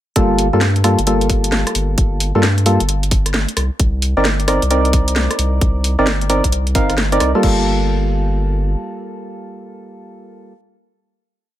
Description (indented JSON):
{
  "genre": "UK garage, two-step garage",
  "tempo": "132 BPM",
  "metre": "4/4",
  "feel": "swing 64% on 16ths",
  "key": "G minor",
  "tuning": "A4 = 440 Hz",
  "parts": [
    { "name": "percussive organ stab", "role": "stabs", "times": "0.2-10.5 s", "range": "G3 to F5", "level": "-18 LUFS", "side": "equal", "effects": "chorus, cassette tape, ping-pong delay" },
    { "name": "saturated sub bass", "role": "bass", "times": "0.2-8.8 s", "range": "G1 to G2", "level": "-18 LUFS", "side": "equal", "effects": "sidechain pumping" },
    { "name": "electronic kick drum", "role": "drums", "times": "0.2-7.5 s", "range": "none", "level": "-16 LUFS", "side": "equal", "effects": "none" },
    { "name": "garage drum kit", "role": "drums", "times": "0.2-7.5 s", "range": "crash cymbal, hi-hat, rim click, snare drum", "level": "-20 LUFS", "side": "equal", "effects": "none" }
  ],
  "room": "light reverb, digital ambience",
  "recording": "none",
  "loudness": "-14 LUFS",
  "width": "side -13 dB against mid",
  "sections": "0.2-7.4 drop; 7.4-11.1 final chord",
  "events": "drop 0.2-7.4",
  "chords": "0.2 Gm9; 3.6 Cm9; 7.4 Gm9",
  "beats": "| 0.16 0.61 1.07 1.52 | 1.98 2.43 2.89 3.34 | 3.80 4.25 4.71 5.16 | 5.61 6.07 6.52 6.98 | 7.43 7.89 8.34 8.80 | 9.25 9.71 10.16"
}